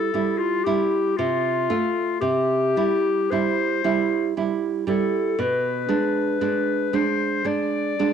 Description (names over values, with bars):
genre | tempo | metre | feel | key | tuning
romantic duo for clarinet and classical guitar | 58 BPM | 3/4 | rubato | C major | A4 = 440 Hz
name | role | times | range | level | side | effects
clear clarinet | melody | 0.0-8.1 s | F4 to D5 | -24 LUFS | left 8 dB | cassette tape
nylon-string guitar | accompaniment | 0.0-8.1 s | B2 to F4 | -22 LUFS | right 6 dB | cassette tape
room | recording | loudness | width
light reverb, studio ambience | home recording on cassette | -20 LUFS | side -8 dB against mid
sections
0.0-8.1 A section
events
none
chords
0.0 C (rootless); 1.2 F/C; 2.2 C; 5.4 Bm6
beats
0.12 1.17 | 2.21 3.31 4.37 | 5.39 6.41 7.46